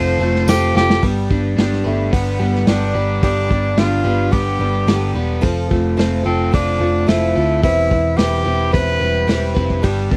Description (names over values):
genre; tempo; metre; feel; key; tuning
folk rock and heartland rock; 109 BPM; 4/4; straight; G mixolydian; A4 = 438 Hz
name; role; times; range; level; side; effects
clear tenor saxophone; melody; 0.0-9.5 s; A3 to C5; -22 LUFS; equal; none
picked acoustic archtop guitar; accompaniment; 0.0-10.2 s; G2 to B4; -24 LUFS; equal; none
crunchy overdriven guitar; riff; 0.0-10.2 s; E2 to B4; -26 LUFS; equal; none
hollow-body short-scale picked electric bass; bass; 0.0-10.2 s; E1 to D2; -22 LUFS; equal; none
vintage drum kit; drums; 0.4-10.2 s; hi-hat, kick drum, snare drum; -21 LUFS; equal; none
tambourine; percussion; 0.5-0.6 s; none; -33 LUFS; equal; none
room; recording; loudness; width
little or no reverb; dry, close 1970s-style studio recording; -17 LUFS; mono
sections
0.0-1.0 A section; 1.0-10.2 B section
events
tenor saxophone solo 0.0-1.0; drum fill 0.8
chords
0.0 F; 1.0 G; 5.4 F; 7.6 Cmaj7/E